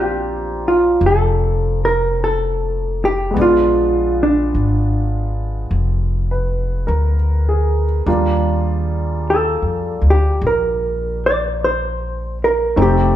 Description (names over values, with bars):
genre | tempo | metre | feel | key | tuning
jazz ballad | 51 BPM | 4/4 | swing 68% on 8ths | Bb major | A4 = 441 Hz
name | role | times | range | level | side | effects
hollow-body jazz guitar | melody | 0.0-13.2 s | D4 to D5 | -17 LUFS | equal | none
warm concert grand piano | accompaniment | 0.0-13.2 s | G3 to Cb5 | -23 LUFS | right 1 dB | none
upright bass | bass | 0.0-13.2 s | F1 to F2 | -18 LUFS | equal | none
room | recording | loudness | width
moderate large studio reverb, RT60 1.2 s | band playing live in one room | -15 LUFS | side -12 dB against mid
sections
0.0-13.2 A section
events
none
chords
0.0 Bb; 3.4 Bb7b9; 8.1 Ebmaj9